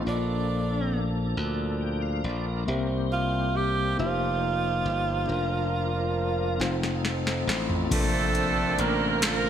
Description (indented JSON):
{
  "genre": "slow gospel",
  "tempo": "46 BPM (dotted quarters)",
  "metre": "6/8",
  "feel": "straight",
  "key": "Bb major",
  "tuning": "A4 = 440 Hz",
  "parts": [
    { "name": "mellow tine electric piano", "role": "accompaniment", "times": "0.0-9.5 s", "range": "Bb2 to A5", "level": "-32 LUFS", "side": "left 4 dB", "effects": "medium stereo tremolo" },
    { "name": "tonewheel organ", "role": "sustained chords", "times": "0.0-9.5 s", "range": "D3 to G5", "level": "-33 LUFS", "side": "right 2 dB", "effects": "fast rotary speaker, chorus vibrato" },
    { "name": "glassy slap bass", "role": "bass", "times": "0.0-9.5 s", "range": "F1 to D2", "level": "-29 LUFS", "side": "left 1 dB", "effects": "none" },
    { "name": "breathy tenor saxophone", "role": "melody", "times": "0.1-7.0 s", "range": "D4 to G4", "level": "-30 LUFS", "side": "right 4 dB", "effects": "ping-pong delay" },
    { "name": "booming analog drum machine", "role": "drums", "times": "6.6-9.4 s", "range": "crash cymbal, hi-hat, kick drum, snare drum, toms", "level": "-28 LUFS", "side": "equal", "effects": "none" },
    { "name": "clear horn section", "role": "melody", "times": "7.9-9.5 s", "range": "A3 to Bb4", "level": "-25 LUFS", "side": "right 4 dB", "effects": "none" },
    { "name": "group handclap", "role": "percussion", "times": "9.2-9.5 s", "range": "none", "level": "-35 LUFS", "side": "left 2 dB", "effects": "none" }
  ],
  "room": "moderate lush hall reverb, RT60 3.0 s",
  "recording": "bright 1980s-style digital production",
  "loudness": "-24 LUFS",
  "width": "side -9 dB against mid",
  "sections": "0.0-7.9 A section; 7.9-9.5 B section",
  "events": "drum fill 6.6-7.9",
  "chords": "0.1 Bbmaj7; 2.7 C7; 4.0 F9sus4; 5.3 Bb/F; 6.6 F7; 7.9 Bbmaj9"
}